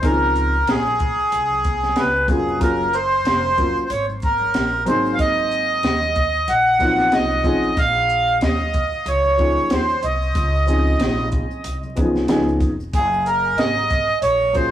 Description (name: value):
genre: hip hop, jazz-hop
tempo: 93 BPM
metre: 4/4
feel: swing 57% on 16ths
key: unclear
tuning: A4 = 442 Hz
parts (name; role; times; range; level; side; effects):
- accordion; melody; 0.0-14.7 s; Ab4 to Gb5; -18 LUFS; right 1 dB; analog delay
- warm upright piano; accompaniment; 0.0-14.7 s; Eb3 to Bb4; -22 LUFS; left 1 dB; none
- upright bass; bass; 0.0-14.7 s; F1 to Eb2; -25 LUFS; equal; none
- compact cocktail drum kit; drums; 0.0-14.7 s; hi-hat, kick drum, shaker, snare drum; -23 LUFS; equal; none
- maracas and congas; percussion; 0.0-14.7 s; none; -39 LUFS; left 1 dB; none
room: moderate studio reverb, RT60 0.5 s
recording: rough rehearsal-room recording, vinyl crackle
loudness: -16 LUFS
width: side -11 dB against mid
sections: 0.0-14.7 A section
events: none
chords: 0.0 Dbmaj9; 2.0 Gbmaj9; 4.9 Ab9; 7.8 Bbm11; 10.4 Dbmaj9; 12.3 Db9; 12.9 Gbadd9